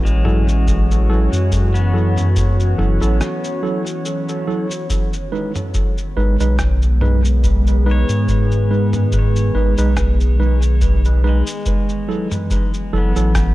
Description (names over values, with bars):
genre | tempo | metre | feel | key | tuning
ambient dub | 71 BPM | 4/4 | swing 55% on 16ths | F# dorian | A4 = 435 Hz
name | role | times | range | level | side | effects
warbly tape-like pad | sustained chords | 0.0-13.5 s | D#3 to C#5 | -24 LUFS | equal | chorus, built-in reverb
warm sub bass | bass | 0.0-13.5 s | F#1 to G#2 | -15 LUFS | equal | none
pedal steel guitar | arpeggios | 0.1-13.5 s | G#3 to C#5 | -30 LUFS | left 2 dB | dub echo
lo-fi sampler-style drum kit | drums | 0.1-13.5 s | cabasa, rim click, toms | -27 LUFS | equal | dub echo
tine electric piano | stabs | 0.3-13.3 s | F#3 to B4 | -24 LUFS | right 3 dB | medium stereo tremolo, dub echo
electronic kick drum | drums | 0.7-13.5 s | none | -21 LUFS | equal | none
room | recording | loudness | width
little or no reverb | dark, warm production | -14 LUFS | side -17 dB against mid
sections
0.0-13.5 A section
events
break 3.2-4.9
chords
0.0 F#m7; 4.9 G#m; 11.7 F#m7